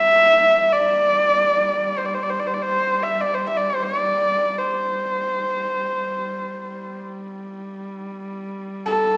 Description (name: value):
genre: mongolian traditional, Mongolian folk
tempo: free time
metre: none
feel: none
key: G zhi mode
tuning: A4 = 439 Hz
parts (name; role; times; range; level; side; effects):
- warm horsehead fiddle; melody; 0.0-9.2 s; A4 to E5; -18 LUFS; equal; none
- dark horsehead fiddle; drone; 0.0-9.2 s; G3; -33 LUFS; equal; none
room: moderate recital hall reverb, RT60 1.6 s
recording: small speaker sound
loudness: -17 LUFS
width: side -25 dB against mid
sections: 0.0-9.2 A section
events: slowing down 6.1-9.2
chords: none